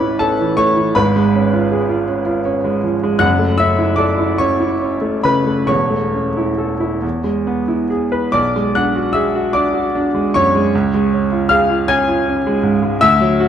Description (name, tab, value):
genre	classical, romantic character piece for solo piano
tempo	44-54 BPM (dotted quarters)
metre	6/8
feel	rubato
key	A major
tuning	A4 = 435 Hz
part	clear baby grand piano	solo	0.0-13.5 s	E1 to G#6	-13 LUFS	equal	none
room	moderate large studio reverb, RT60 1.2 s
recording	dark, warm production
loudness	-14 LUFS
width	side -9 dB against mid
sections	0.0-13.5 A section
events	none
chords	0.0 A; 1.0 C#7/G#; 3.2 F#m7; 5.7 A/E; 7.0 E; 8.3 G#m7b5/B; 10.7 C#